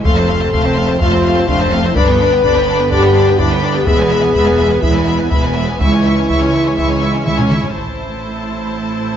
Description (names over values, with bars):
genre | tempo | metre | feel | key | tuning
cinematic, epic orchestral film score | 125 BPM | 4/4 | straight | A minor | A4 = 440 Hz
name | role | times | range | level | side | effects
warm symphonic violin section | melody | 0.0-9.2 s | G5 to C#6 | -24 LUFS | left 4 dB | none
bright trombone section | sustained chords | 0.0-7.5 s | C3 to C4 | -23 LUFS | right 3 dB | none
dark French horn section | sustained chords | 0.0-9.2 s | E3 to B4 | -16 LUFS | left 3 dB | none
warm symphonic violin section | second line | 0.1-9.2 s | B4 to F5 | -22 LUFS | left 2 dB | none
rich symphonic viola section | accompaniment | 0.1-9.2 s | G#3 to E4 | -22 LUFS | right 2 dB | none
clear studio cello section | bass | 0.1-9.2 s | C#2 to A2 | -20 LUFS | right 2 dB | none
clear symphonic double bass section | bass | 0.1-9.2 s | E1 to C#2 | -21 LUFS | right 3 dB | none
taiko ensemble | drums | 0.1-8.7 s | none | -20 LUFS | equal | none
room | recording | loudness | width
moderate scoring stage reverb, RT60 1.6 s | nothing above 7.6 kHz | -11 LUFS | side -9 dB against mid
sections
0.0-7.8 A section; 7.8-9.2 B section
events
drum fill 7.3-7.8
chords
0.1 F; 2.0 G; 3.9 E; 5.8 C#m; 7.8 Am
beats
| 0.06 0.54 1.01 1.49 | 1.97 2.44 2.92 3.39 | 3.87 4.35 4.83 5.31 | 5.80 6.29 6.78 7.26 | 7.75 8.23 8.71